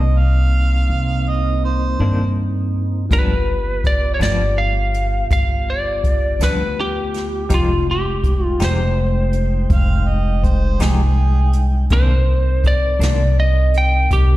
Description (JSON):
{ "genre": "slow blues", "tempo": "55 BPM (dotted quarters)", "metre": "12/8", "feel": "straight", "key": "C minor", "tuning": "A4 = 437 Hz", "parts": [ { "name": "mellow harmonica", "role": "second line", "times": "0.0-2.4, 9.7-11.7 s", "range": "Ab4 to F5", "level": "-26 LUFS", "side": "right 5 dB", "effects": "overdrive, slapback echo" }, { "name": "semi-hollow electric guitar", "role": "accompaniment", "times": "0.0-13.2 s", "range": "G2 to G4", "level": "-26 LUFS", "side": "left 3 dB", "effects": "tremolo, slapback echo" }, { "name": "mellow tonewheel organ", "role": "sustained chords", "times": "0.0-14.4 s", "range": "Ab3 to G5", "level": "-28 LUFS", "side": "right 2 dB", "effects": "slow rotary speaker" }, { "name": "upright bass", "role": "bass", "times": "0.0-14.4 s", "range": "F1 to G2", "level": "-17 LUFS", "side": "equal", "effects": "none" }, { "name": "lightly driven lead guitar", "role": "melody", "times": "3.1-14.4 s", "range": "F4 to G5", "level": "-21 LUFS", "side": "equal", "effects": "slapback echo" }, { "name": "jazz brush drum kit", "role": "drums", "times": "3.1-14.3 s", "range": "hi-hat, kick drum, snare drum", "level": "-19 LUFS", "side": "equal", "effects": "none" } ], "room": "studio reverb", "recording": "live gig heard through the venue's PA, recital hall reverb", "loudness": "-15 LUFS", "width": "side -16 dB against mid", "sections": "0.0-14.4 A section", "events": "none", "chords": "0.0 Cm7; 3.1 G7; 7.5 Fm9; 11.9 Cm9" }